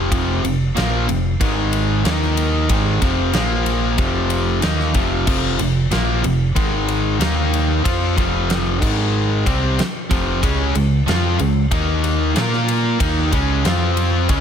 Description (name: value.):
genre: hard rock.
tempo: 93 BPM.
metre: 4/4.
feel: straight.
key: F minor.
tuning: A4 = 440 Hz.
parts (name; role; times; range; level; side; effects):
cranked stack guitar; riff; 0.0-14.4 s; F2 to Bb4; -22 LUFS; right 12 dB; overdrive.
distorted electric guitar; riff; 0.0-14.4 s; F2 to Bb4; -21 LUFS; left 10 dB; overdrive.
overdriven fingered electric bass; bass; 0.0-14.4 s; F1 to Bb2; -21 LUFS; equal; none.
big rock drum kit; drums; 0.1-14.4 s; crash cymbal, kick drum, ride cymbal, snare drum; -22 LUFS; equal; none.
room: small room ambience.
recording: none.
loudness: -16 LUFS.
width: side -8 dB against mid.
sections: 0.0-14.4 A section.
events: none.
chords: 0.0 F5; 1.4 Ab5; 2.1 Eb5; 2.7 Fm; 3.3 Bb5; 4.0 F5; 6.6 Ab5; 7.2 Eb5; 7.8 F5; 8.8 Ab5; 9.5 F5; 10.4 Db5; 11.7 Eb5; 12.4 Bb5; 13.0 Db5; 13.6 F5.